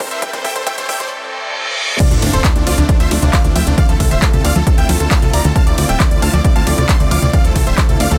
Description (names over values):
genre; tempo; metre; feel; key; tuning
uplifting trance; 135 BPM; 4/4; straight; D minor; A4 = 442 Hz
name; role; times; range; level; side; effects
big supersaw lead; melody; 0.0-8.2 s; D4 to D6; -24 LUFS; equal; sidechain pumping, digital delay
dark baby grand piano; second line; 0.0-8.2 s; D4 to D6; -30 LUFS; equal; none
lush unison pad; sustained chords; 0.0-8.2 s; A2 to A4; -26 LUFS; equal; chorus, sidechain pumping
big-room dance drum kit; drums; 0.0-8.2 s; crash cymbal, handclaps, hi-hat, ride cymbal; -24 LUFS; equal; sidechain pumping on hats, sidechain pumping on cymbals
electronic kick drum; drums; 0.0-7.9 s; none; -16 LUFS; equal; none
riser, reverse cymbal and sub drop; sound effects; 0.0-3.8 s; none; -24 LUFS; equal; none
unison pluck; arpeggios; 0.2-8.2 s; C3 to F3; -24 LUFS; equal; phaser, sidechain pumping, digital delay
plucky analog bass; bass; 2.1-8.2 s; D1 to D2; -18 LUFS; equal; sidechain pumping
room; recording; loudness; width
little or no reverb; dense, heavily limited modern master, high-pass filter; -14 LUFS; mono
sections
0.0-2.0 A section; 2.0-8.2 B section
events
build-up 0.0-2.0; drum fill 0.0-1.1; riser 0.0-1.1; filter sweep 0.0-2.0; reverse cymbal 1.1-2.0; drop 2.0-8.2; impact 2.0-3.8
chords
0.0 Am7; 2.0 Dm7